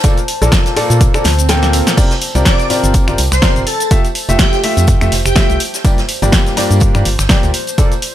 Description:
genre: piano house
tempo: 124 BPM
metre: 4/4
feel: swing 56% on 16ths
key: F major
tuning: A4 = 440 Hz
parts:
  - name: clear grand piano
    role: riff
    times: 0.0-7.9 s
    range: G2 to G5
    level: -18 LUFS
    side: left 1 dB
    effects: sidechain pumping, digital delay
  - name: electronic kick drum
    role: drums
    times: 0.0-7.9 s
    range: none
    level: -12 LUFS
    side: equal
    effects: none
  - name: punchy analog drum machine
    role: drums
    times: 0.0-8.1 s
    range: cabasa, crash cymbal, finger snaps, hi-hat, snare drum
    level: -18 LUFS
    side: left 1 dB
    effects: none
  - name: vintage drum kit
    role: drums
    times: 0.0-8.1 s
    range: hi-hat, snare drum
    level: -26 LUFS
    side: right 2 dB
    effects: none
  - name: tambourine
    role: percussion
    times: 0.0-8.1 s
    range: none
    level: -27 LUFS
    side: right 2 dB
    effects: none
  - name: warbly tape-like pad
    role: texture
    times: 0.0-8.1 s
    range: F4 to A5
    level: -26 LUFS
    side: left 2 dB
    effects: chorus, built-in reverb, sidechain pumping
  - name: organ-like FM bass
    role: bass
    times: 0.4-7.5 s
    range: F1 to Bb2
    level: -14 LUFS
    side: equal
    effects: sidechain pumping
  - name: swell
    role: sound effects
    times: 1.2-2.0 s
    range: none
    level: -23 LUFS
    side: right 5 dB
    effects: none
  - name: airy dreamy lead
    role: melody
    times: 2.5-5.6 s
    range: G4 to D5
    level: -20 LUFS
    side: equal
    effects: chorus, digital delay
room: studio ambience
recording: none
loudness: -10 LUFS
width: side -12 dB against mid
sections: 0.0-8.1 A section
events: swell 1.2-2.0; drum fill 1.2-2.0; kick drops out 1.5-2.0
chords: 0.0 Bbmaj7; 2.0 C9sus4; 3.9 Fmaj9; 5.8 Gm7; 7.5 Bbmaj7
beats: | 0.04 0.52 1.01 1.49 | 1.97 2.46 2.94 3.43 | 3.91 4.39 4.88 5.36 | 5.84 6.33 6.81 7.30 | 7.78

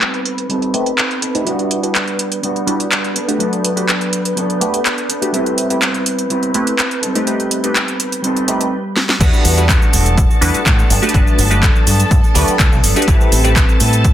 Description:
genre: filtered disco house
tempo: 124 BPM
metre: 4/4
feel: straight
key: E minor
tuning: A4 = 438 Hz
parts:
  - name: string machine, full ensemble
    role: sustained chords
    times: 0.0-14.1 s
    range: A4 to G6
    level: -24 LUFS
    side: equal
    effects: ensemble chorus, sidechain pumping, low-pass filter
  - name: mellow electric guitar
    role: riff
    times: 0.0-14.1 s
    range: F#3 to B4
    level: -21 LUFS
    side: right 1 dB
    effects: vintage 12-bit sampler grit, sidechain pumping, low-pass filter
  - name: house drum kit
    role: drums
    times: 0.0-14.1 s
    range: cabasa, crash cymbal, handclaps, hi-hat, snare drum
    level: -18 LUFS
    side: equal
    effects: sidechain pumping on hats, low-pass filter on hats, low-pass filter on snare, sidechain pumping on cymbals, low-pass filter on cymbals, sidechain pumping on perc, low-pass filter on perc
  - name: funky polysynth comp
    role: accompaniment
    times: 0.7-13.6 s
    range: G3 to B4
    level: -20 LUFS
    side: equal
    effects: chorus, phaser, sidechain pumping, low-pass filter
  - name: fingered electric bass with an envelope filter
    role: bass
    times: 9.2-14.1 s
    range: E1 to A2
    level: -16 LUFS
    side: equal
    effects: sidechain pumping, low-pass filter
  - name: electronic kick drum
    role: drums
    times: 9.2-14.1 s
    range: none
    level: -13 LUFS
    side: equal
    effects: none
room: light reverb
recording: dense, heavily limited modern master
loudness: -12 LUFS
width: side -11 dB against mid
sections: 0.0-9.2 A section; 9.2-14.1 B section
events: filter sweep 0.0-9.2; drum fill 9.0; drop 9.2-14.1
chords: 0.0 B7b9b13; 1.5 Em9; 3.2 Gmaj9; 5.3 Am9; 7.0 B7b9b13; 9.2 Em9; 10.9 Gmaj9; 13.1 Am9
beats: 0.01 0.50 0.98 | 1.47 1.95 2.43 2.92 | 3.40 3.88 4.37 4.85 | 5.34 5.82 6.30 6.79 | 7.27 7.75 8.24 8.72 | 9.21 9.69 10.17 10.66 | 11.14 11.63 12.11 12.59 | 13.08 13.56 14.04

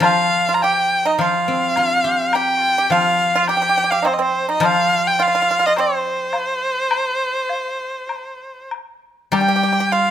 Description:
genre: chinese traditional, Chinese chamber ensemble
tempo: 104 BPM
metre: 4/4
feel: rubato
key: unclear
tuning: A4 = 440 Hz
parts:
  - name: clear erhu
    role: melody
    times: 0.0-10.1 s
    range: C5 to Bb5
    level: -18 LUFS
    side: equal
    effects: none
  - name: pipa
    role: second line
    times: 0.0-10.1 s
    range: C4 to G4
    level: -21 LUFS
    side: right 5 dB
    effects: none
  - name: guzheng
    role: accompaniment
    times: 0.0-10.1 s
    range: F3 to G4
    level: -23 LUFS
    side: left 4 dB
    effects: none
  - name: woodblock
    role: percussion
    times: 0.0-9.5 s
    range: none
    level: -26 LUFS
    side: left 4 dB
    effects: none
room: light reverb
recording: close, detailed microphones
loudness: -15 LUFS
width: side -10 dB against mid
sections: 0.0-9.3 A section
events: none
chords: none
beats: | 0.01 0.61 1.19 1.76 | 2.34 2.91 3.48 4.04 | 4.61 5.18 5.75 6.32 | 6.90 7.49 8.08 8.70 | 9.31 9.91

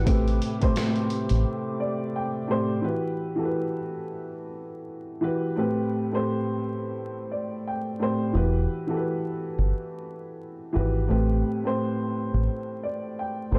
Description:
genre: hip hop, boom-bap hip-hop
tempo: 87 BPM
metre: 4/4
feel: swing 59% on 16ths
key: E minor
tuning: A4 = 440 Hz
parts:
  - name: dark upright piano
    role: accompaniment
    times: 0.0-13.6 s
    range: A2 to G5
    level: -29 LUFS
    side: equal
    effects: cassette tape, high-pass filter, low-pass filter
  - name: percussive tonewheel organ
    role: sustained chords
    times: 0.0-2.8 s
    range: C3 to G4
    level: -37 LUFS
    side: equal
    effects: overdrive, slow rotary speaker, high-pass filter, low-pass filter
  - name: deep dub fingered electric bass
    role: bass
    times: 0.0-1.4, 8.3-13.6 s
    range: E1 to A1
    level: -25 LUFS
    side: equal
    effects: none
  - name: boom bap sampler-style drum kit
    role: drums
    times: 0.1-1.4 s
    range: hi-hat, kick drum, snare drum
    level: -29 LUFS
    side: equal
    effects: none
room: digital ambience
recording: dark, warm production, vinyl crackle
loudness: -27 LUFS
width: mono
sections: 0.0-2.8 A section; 2.8-13.6 B section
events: break 1.4-2.8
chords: 0.1 Am7; 2.8 Emadd9; 5.6 Am7; 8.3 Emadd9; 11.1 Am7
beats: | 0.07 0.76 1.45 2.14 | 2.83 3.52 4.21 4.90 | 5.59 6.28 6.96 7.66 | 8.35 9.03 9.72 10.41 | 11.10 11.79 12.48 13.17

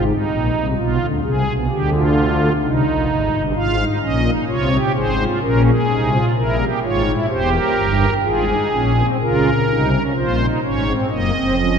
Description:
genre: classical, baroque-style 3-part fugue for pipe organ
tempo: 64 BPM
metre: 3/4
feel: straight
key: F minor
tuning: A4 = 440 Hz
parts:
  - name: pipe organ, strings celeste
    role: solo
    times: 0.0-11.8 s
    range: E1 to F5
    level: -15 LUFS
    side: equal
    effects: none
room: wet cathedral reverb, RT60 4.1 s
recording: minimal, uncompressed stereo recording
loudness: -16 LUFS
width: side -6 dB against mid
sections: 0.0-9.2 A section; 9.2-11.8 B section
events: none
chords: 0.0 Fm/Ab (rootless); 0.8 G7/B (rootless); 2.6 Cm; 3.6 Fm/Ab; 5.4 Bbm; 6.4 C7 (rootless); 8.2 Fm/Ab; 11.1 Ebm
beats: | 0.77 1.69 2.62 | 3.55 4.49 5.42 | 6.35 7.29 8.24 | 9.20 10.15 11.10

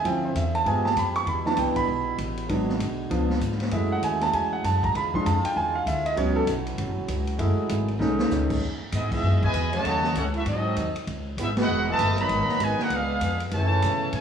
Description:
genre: jazz, big band swing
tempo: 196 BPM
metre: 4/4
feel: swing 62% on 8ths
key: E major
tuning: A4 = 445 Hz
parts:
  - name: clear concert grand piano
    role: accompaniment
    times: 0.0-8.6 s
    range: E3 to C#6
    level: -25 LUFS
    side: right 2 dB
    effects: none
  - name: bright trombone section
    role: sustained chords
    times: 0.0-8.6 s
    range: B2 to G#4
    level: -35 LUFS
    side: equal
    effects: none
  - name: upright bass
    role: bass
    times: 0.0-14.2 s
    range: E1 to B2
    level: -27 LUFS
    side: left 1 dB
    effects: none
  - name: swinging big-band drum kit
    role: drums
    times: 0.0-14.2 s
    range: crash cymbal, hi-hat, kick drum, ride cymbal, snare drum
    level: -33 LUFS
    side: left 1 dB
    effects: none
  - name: brilliant trumpet section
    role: melody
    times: 8.9-14.2 s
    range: B3 to B5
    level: -26 LUFS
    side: equal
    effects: none
  - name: warm trombone section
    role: second line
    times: 8.9-14.2 s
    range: B2 to F#4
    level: -29 LUFS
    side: right 2 dB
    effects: none
room: moderate scoring stage reverb, RT60 1.8 s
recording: worn, warbling old tape, cassette tape, warbly pitch drift, studio ambience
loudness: -22 LUFS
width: side -8 dB against mid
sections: 0.0-8.6 A section; 8.6-14.2 B section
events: grand piano solo 0.0-8.6; drum fill 8.0-8.3; band accent 9.1, 11.5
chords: 0.0 Dm9; 0.7 G7b9; 1.3 Cmaj7; 2.5 G#m7b5; 3.1 C#7b9; 3.7 F#m7; 4.9 E7b9; 6.2 A6; 7.4 F#m9; 8.0 B13; 8.6 Emaj7; 9.8 D#m7b5; 10.5 G#7b9; 11.1 C#m11; 12.3 G#m9; 12.9 C#7b9; 13.5 F#m9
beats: | 0.05 0.35 0.66 0.96 | 1.27 1.58 1.88 2.19 | 2.50 2.80 3.11 3.41 | 3.72 4.03 4.33 4.64 | 4.95 5.25 5.56 5.86 | 6.17 6.48 6.78 7.09 | 7.39 7.70 8.01 8.31 | 8.62 8.93 9.23 9.54 | 9.85 10.15 10.46 10.76 | 11.07 11.37 11.68 11.99 | 12.29 12.60 12.90 13.21 | 13.51 13.82 14.12

